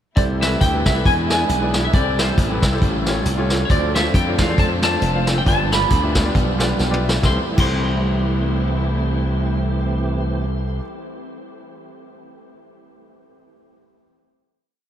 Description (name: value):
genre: uptempo gospel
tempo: 136 BPM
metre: 4/4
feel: swing 56% on 8ths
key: C major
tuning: A4 = 440 Hz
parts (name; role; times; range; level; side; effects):
- clean lap steel guitar; melody; 0.2-10.8 s; C5 to C6; -24 LUFS; equal; wide subtle chorus
- clear grand piano; accompaniment; 0.2-10.8 s; C2 to G5; -26 LUFS; left 2 dB; none
- tonewheel organ; sustained chords; 0.2-10.5 s; E3 to B4; -28 LUFS; right 4 dB; slow rotary speaker, overdrive, chorus vibrato
- warm studio string section; sustained chords; 0.2-10.4 s; G3 to E#4; -30 LUFS; right 1 dB; none
- glassy slap bass; bass; 0.2-10.8 s; F1 to F2; -21 LUFS; equal; none
- vintage brush drum kit; drums; 0.2-7.7 s; crash cymbal, hi-hat, kick drum, snare drum, toms; -20 LUFS; equal; none
room: moderate huge ambient reverb, RT60 8.6 s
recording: dreamy mix soaked in reverb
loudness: -16 LUFS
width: side -10 dB against mid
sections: 0.2-7.2 breakdown; 7.2-10.8 final chord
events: grand piano fill 6.6-7.2; drum fill 6.8-7.2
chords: 0.2 C6; 1.1 E7; 1.9 Am7/C; 2.8 A7alt; 3.7 Dm7; 5.5 G7; 7.2 C6